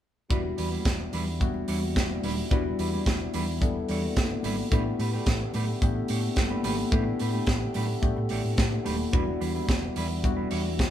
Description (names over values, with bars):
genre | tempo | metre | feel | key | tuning
disco | 109 BPM | 4/4 | straight | unclear | A4 = 440 Hz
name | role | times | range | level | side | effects
mellow electric guitar | accompaniment | 0.3-10.7 s | G3 to C#5 | -35 LUFS | right 5 dB | spring reverb
reed electric piano | accompaniment | 0.3-10.9 s | G3 to A4 | -32 LUFS | left 5 dB | phaser
mellow French horn section | sustained chords | 0.3-10.9 s | D3 to G4 | -35 LUFS | equal | none
hollow-body short-scale fingered electric bass | bass | 0.3-10.9 s | Eb1 to A2 | -32 LUFS | equal | none
tight funk drum kit | drums | 0.3-10.9 s | hi-hat, kick drum, snare drum | -28 LUFS | right 1 dB | none
congas | percussion | 0.3-10.9 s | none | -38 LUFS | left 2 dB | none
room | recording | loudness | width
moderate studio reverb, RT60 0.8 s | band playing live in one room | -25 LUFS | side -10 dB against mid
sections
0.3-10.9 A section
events
none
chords
0.3 Em7; 4.7 A9sus4; 9.1 Em7